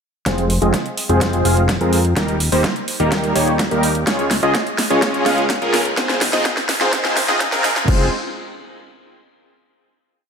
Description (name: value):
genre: EDM, festival progressive house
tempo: 126 BPM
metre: 4/4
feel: straight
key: F minor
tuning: A4 = 440 Hz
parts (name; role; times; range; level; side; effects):
- supersaw chords; riff; 0.3-8.1 s; G3 to F5; -18 LUFS; equal; cassette tape, sidechain pumping, low-pass filter, tape echo
- fat analog bass; bass; 0.3-8.1 s; Eb1 to F2; -21 LUFS; equal; sidechain pumping
- big-room dance drum kit; drums; 0.3-8.0 s; crash cymbal, hi-hat, snare drum; -21 LUFS; equal; overdrive
- electronic kick drum; drums; 0.3-8.0 s; none; -22 LUFS; equal; high-pass filter on kick, high-pass filter on room
room: moderate lush hall reverb, RT60 2.0 s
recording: high-pass filter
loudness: -15 LUFS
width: side -6 dB against mid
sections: 0.3-7.9 build; 7.9-9.8 final chord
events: build-up 0.3-7.9; drum fill 0.3-7.9; filter sweep on supersaw synth 0.3-7.9; filter sweep 0.3-7.9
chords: 0.3 Fm; 2.2 Eb; 4.1 Db; 6.0 Ab6; 7.9 Fm